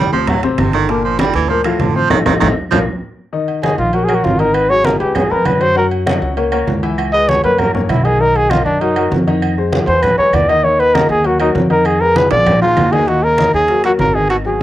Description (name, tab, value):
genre	Afro-Cuban jazz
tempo	197 BPM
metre	4/4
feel	straight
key	G minor, Eb minor from 3.3 s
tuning	A4 = 440 Hz
part	warm baritone saxophone	second line	0.0-2.8, 12.6-14.6 s	Ab2 to G3	-18 LUFS	right 7 dB	cassette tape
part	warm upright piano	accompaniment	0.0-14.6 s	Bb2 to C6	-19 LUFS	left 5 dB	cassette tape
part	upright bass	bass	0.0-14.6 s	G1 to Gb2	-19 LUFS	equal	none
part	congas	percussion	0.1-14.6 s	none	-20 LUFS	equal	none
part	claves	percussion	0.3-14.5 s	none	-29 LUFS	right 2 dB	none
part	timbales and agogo bells	percussion	0.3-14.6 s	none	-25 LUFS	right 10 dB	none
part	dark trumpet	melody	3.6-14.6 s	Db4 to Eb5	-13 LUFS	equal	cassette tape
room	moderate booth ambience, RT60 0.2 s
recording	home recording on cassette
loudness	-11 LUFS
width	side -13 dB against mid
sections	0.0-3.3 A section; 3.3-13.1 A section; 13.1-14.6 B section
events	baritone saxophone solo 0.0-3.3; band accent 2.1-3.3; drum fill 2.4-3.3, 12.2-13.1; trumpet solo 3.3-13.1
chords	0.3 D7; 0.9 Gm11; 2.1 Adim; 2.7 Bb; 3.3 Ebm; 4.5 Abm7; 5.2 Db7; 5.8 Gb; 7.0 Dbm7; 7.6 Gb; 8.2 Bmaj7; 9.4 Fm7; 10.0 E; 10.6 Ebm; 11.9 Fm7b5; 12.5 Bb5; 13.1 Ebm7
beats	0.28 0.58 | 0.89 1.20 1.50 1.81 | 2.11 2.42 2.72 3.03 | 3.33 3.63 3.94 4.24 | 4.55 4.85 5.16 5.46 | 5.77 6.07 6.38 6.68 | 6.99 7.29 7.59 7.90 | 8.20 8.51 8.81 9.12 | 9.42 9.73 10.03 10.34 | 10.64 10.95 11.25 11.55 | 11.86 12.16 12.47 12.77 | 13.08 13.38 13.69 13.99 | 14.30 14.61